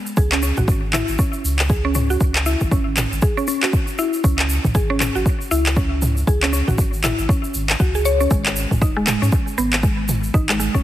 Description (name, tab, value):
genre	afro house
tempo	118 BPM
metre	4/4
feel	swing 59% on 16ths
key	unclear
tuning	A4 = 440 Hz
part	egg shaker	percussion	0.1-10.8 s	none	-30 LUFS	right 1 dB	none
part	mallet-like synth pluck	arpeggios	0.2-10.8 s	G#3 to C#5	-22 LUFS	equal	chorus, sidechain pumping, digital delay
part	warm sub bass	bass	0.2-10.8 s	D#1 to G#2	-22 LUFS	equal	sidechain pumping
part	electronic kick drum	drums	0.2-10.8 s	none	-19 LUFS	equal	overdrive
part	deep house drum kit	drums	0.3-10.6 s	handclaps, toms	-23 LUFS	equal	overdrive
room	light reverb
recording	heavily compressed radio sound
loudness	-16 LUFS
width	side -13 dB against mid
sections	0.0-10.8 A section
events	none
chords	0.2 C#5; 8.3 G#5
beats	| 0.17 0.68 1.19 1.70 | 2.21 2.71 3.22 3.73 | 4.24 4.75 5.26 5.76 | 6.27 6.78 7.29 7.80 | 8.31 8.82 9.32 9.83 | 10.34